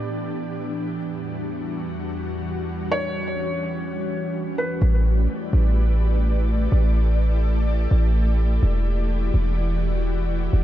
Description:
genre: hip hop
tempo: 126 BPM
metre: 4/4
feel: half-time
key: unclear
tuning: A4 = 443 Hz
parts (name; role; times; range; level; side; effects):
- felt-muted upright piano; melody; 0.0-4.8 s; B4 to D5; -29 LUFS; equal; tape echo
- ethereal airy pad; sustained chords; 0.0-10.6 s; E2 to D5; -27 LUFS; equal; ensemble chorus, built-in reverb
- warm 808-style bass; bass; 4.8-10.6 s; E1 to A1; -19 LUFS; equal; none
room: light reverb, small room ambience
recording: dark, warm production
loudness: -20 LUFS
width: side -13 dB against mid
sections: 0.0-4.8 A section; 4.8-10.6 B section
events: none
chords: 0.0 A9sus4; 1.0 Em9; 4.8 A9sus4; 8.6 Em9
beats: 0.06 0.53 | 1.01 1.48 1.96 2.44 | 2.91 3.39 3.87 4.34 | 4.82 5.29 5.77 6.25 | 6.72 7.20 7.67 8.15 | 8.63 9.10 9.58 10.05 | 10.53

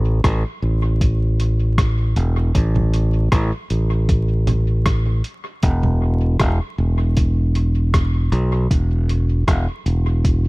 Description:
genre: ambient dub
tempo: 78 BPM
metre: 4/4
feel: swing 54% on 16ths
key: unclear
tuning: A4 = 440 Hz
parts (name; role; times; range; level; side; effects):
- fingered electric bass; bass; 0.0-10.5 s; E1 to B1; -17 LUFS; equal; none
- electronic kick drum; drums; 0.2-10.4 s; none; -18 LUFS; equal; none
- lo-fi sampler-style drum kit; drums; 0.2-10.4 s; congas, hi-hat, rim click; -27 LUFS; right 1 dB; dub echo
room: digital ambience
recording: dark, warm production, vinyl crackle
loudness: -16 LUFS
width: side -25 dB against mid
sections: 0.0-10.5 A section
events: none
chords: none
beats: 0.24 1.01 1.78 | 2.55 3.32 4.09 4.86 | 5.63 6.40 7.17 7.93 | 8.70 9.47 10.24

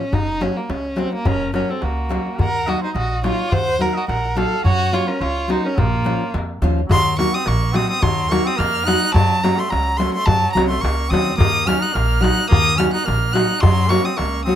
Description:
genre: balkan folk, Balkan wedding band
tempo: 107 BPM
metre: 2/4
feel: swing 55% on 16ths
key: unclear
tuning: A4 = 440 Hz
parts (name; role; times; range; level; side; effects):
- rich violin; melody; 0.0-14.6 s; Bb3 to Gb6; -21 LUFS; equal; none
- nylon-string guitar; accompaniment; 0.0-14.6 s; F3 to Gb4; -21 LUFS; left 1 dB; none
- upright bass; bass; 0.1-14.5 s; Gb1 to Gb2; -21 LUFS; equal; none
- darbuka; percussion; 0.1-14.3 s; none; -22 LUFS; left 1 dB; none
- clear trumpet; second line; 1.3-14.6 s; Gb3 to Gb5; -26 LUFS; right 2 dB; none
room: light reverb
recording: close, detailed microphones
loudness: -16 LUFS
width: side -10 dB against mid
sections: 0.0-6.9 A section; 6.9-14.6 B section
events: none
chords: 0.1 Gb; 2.4 Ebm; 4.6 Gb; 5.8 Bbm; 6.9 Ebm; 9.1 Gb; 11.4 Ebm; 13.6 Gb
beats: | 0.13 0.70 | 1.26 1.83 | 2.39 2.96 | 3.52 4.08 | 4.65 5.21 | 5.78 6.34 | 6.90 7.46 | 8.03 8.59 | 9.15 9.71 | 10.27 10.83 | 11.39 11.95 | 12.51 13.07 | 13.63 14.19

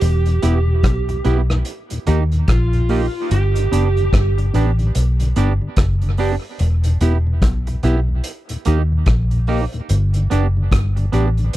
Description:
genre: dub reggae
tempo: 73 BPM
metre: 4/4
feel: swing 60% on 16ths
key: G major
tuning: A4 = 438 Hz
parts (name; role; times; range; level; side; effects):
- lead guitar through a small cranked amp; melody; 0.0-4.1 s; F4 to G4; -24 LUFS; right 4 dB; overdrive, tape echo
- vintage muted fingered electric bass; bass; 0.0-11.5 s; E1 to Eb2; -16 LUFS; equal; none
- vintage drum kit; drums; 0.0-11.6 s; hi-hat, kick drum, rim click; -21 LUFS; equal; none
- mellow tonewheel organ; accompaniment; 0.3-11.5 s; Eb2 to G4; -25 LUFS; left 3 dB; slow rotary speaker
- semi-hollow electric guitar; accompaniment; 0.4-11.3 s; Bb3 to G4; -25 LUFS; right 7 dB; tape echo
room: little or no reverb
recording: none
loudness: -15 LUFS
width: side -15 dB against mid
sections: 0.0-11.6 A section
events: none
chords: 0.0 Em; 1.7 Eb; 3.3 G; 6.6 Em; 8.2 Eb; 9.9 G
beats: | 0.01 0.84 1.66 2.48 | 3.31 4.13 4.95 5.78 | 6.60 7.42 8.24 9.07 | 9.89 10.71 11.54

